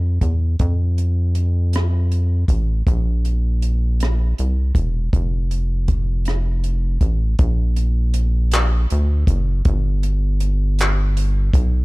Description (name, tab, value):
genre	slow six-eight R&B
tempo	53 BPM (dotted quarters)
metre	6/8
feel	straight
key	Bb major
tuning	A4 = 438 Hz
part	rubbery square bass	bass	0.0-11.8 s	E1 to F2	-18 LUFS	equal	none
part	compact cocktail drum kit	drums	0.2-11.7 s	handclaps, hi-hat, kick drum, rim click	-21 LUFS	equal	none
room	little or no reverb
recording	dark, warm production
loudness	-17 LUFS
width	side -23 dB against mid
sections	0.0-7.4 A section; 7.4-11.8 B section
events	none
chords	none